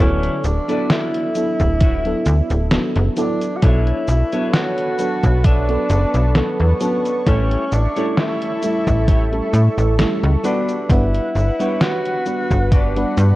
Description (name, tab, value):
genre	vaporwave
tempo	66 BPM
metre	4/4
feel	swing 54% on 16ths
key	D major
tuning	A4 = 440 Hz
part	breathy tenor saxophone	melody	0.0-13.4 s	B3 to F#4	-23 LUFS	equal	tape echo
part	FM electric piano with soft pad layer	accompaniment	0.0-13.4 s	D3 to F#5	-22 LUFS	equal	wide subtle chorus, cassette tape
part	clean electric guitar	riff	0.0-13.2 s	D4 to E5	-31 LUFS	left 2 dB	lush chorus, analog delay
part	slap-like FM bass	bass	0.0-13.3 s	D1 to A2	-17 LUFS	equal	none
part	detuned 8-bit digital drum machine	drums	0.2-13.4 s	cabasa, hi-hat, snare drum	-22 LUFS	equal	studio reverb
part	electronic kick drum	drums	1.6-12.9 s	none	-16 LUFS	equal	studio reverb
part	lush unison pad	sustained chords	4.2-13.4 s	A4 to C#6	-30 LUFS	right 1 dB	chorus, phaser
room	light reverb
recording	worn, warbling old tape, cassette tape, warbly pitch drift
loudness	-15 LUFS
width	side -17 dB against mid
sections	0.0-13.4 A section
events	none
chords	0.0 D69; 3.6 Bm9; 7.3 A7; 10.4 Gmaj7